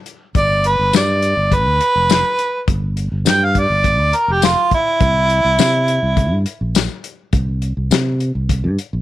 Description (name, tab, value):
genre	straight-eighth soul blues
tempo	103 BPM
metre	4/4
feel	straight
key	G mixolydian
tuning	A4 = 440 Hz
part	warm soul drum kit	drums	0.1-8.9 s	hi-hat, kick drum, snare drum, tambourine	-18 LUFS	left 4 dB	none
part	fingered electric bass	bass	0.3-9.0 s	F1 to C3	-18 LUFS	equal	none
part	mellow harmonica	melody	0.4-6.4 s	E4 to G5	-15 LUFS	right 1 dB	overdrive
room	small room ambience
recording	1960s-style stereo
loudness	-14 LUFS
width	side -14 dB against mid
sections	0.0-9.0 A section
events	none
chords	0.0 G; 5.0 C